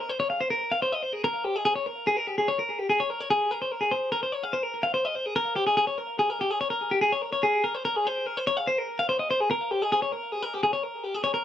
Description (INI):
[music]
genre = rock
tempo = 145 BPM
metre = 5/4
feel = straight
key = unclear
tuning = A4 = 440 Hz
[part]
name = clean electric guitar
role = solo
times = 0.0-11.4 s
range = G4 to F5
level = -24 LUFS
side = left 1 dB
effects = digital delay
[sound]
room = light reverb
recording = none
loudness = -24 LUFS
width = side -10 dB against mid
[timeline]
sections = 0.0-11.4 A section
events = none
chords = none